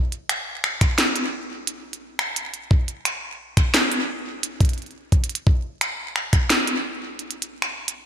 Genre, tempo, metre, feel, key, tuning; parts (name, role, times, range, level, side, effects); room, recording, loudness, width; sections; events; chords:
IDM; 87 BPM; 4/4; straight
glitchy drum kit; drums; 0.1-8.0 s; finger snaps, hi-hat, snare drum; -22 LUFS; equal; overdrive, gated reverb, digital delay
electronic kick drum; drums; 0.8-6.5 s; -18 LUFS; equal
light reverb; bright 1980s-style digital production, faint mains hum; -20 LUFS; side -9 dB against mid
0.0-8.1 A section